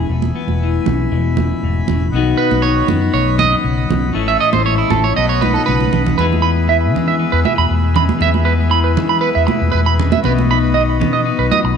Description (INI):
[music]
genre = highlife guitar band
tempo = 118 BPM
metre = 4/4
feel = straight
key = E major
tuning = A4 = 440 Hz
[part]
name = clean electric guitar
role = accompaniment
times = 0.0-11.8 s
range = E2 to G#4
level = -20 LUFS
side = left 10 dB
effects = none
[part]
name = accordion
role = sustained chords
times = 0.0-11.8 s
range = F#4 to C#6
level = -25 LUFS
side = left 3 dB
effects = none
[part]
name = fingered electric bass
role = bass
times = 0.0-11.7 s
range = E1 to E3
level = -17 LUFS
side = left 1 dB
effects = none
[part]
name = congas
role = percussion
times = 0.2-11.6 s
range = none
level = -21 LUFS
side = right 9 dB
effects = none
[part]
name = electric guitar at the edge of break-up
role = arpeggios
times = 2.4-11.7 s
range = E4 to B5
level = -17 LUFS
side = right 8 dB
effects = phaser, tape echo
[sound]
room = moderate echo chamber reverb, RT60 1.6 s, studio reverb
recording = 1960s-style stereo with parts hard left and right, nothing above 11.0 kHz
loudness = -13 LUFS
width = side -7 dB against mid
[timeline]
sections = 0.0-6.2 A section; 6.2-11.8 B section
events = clean electric guitar solo 0.0-6.2; drum fill 5.5-6.2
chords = 0.0 E; 2.1 B; 4.2 A; 5.2 B; 6.2 E; 10.2 B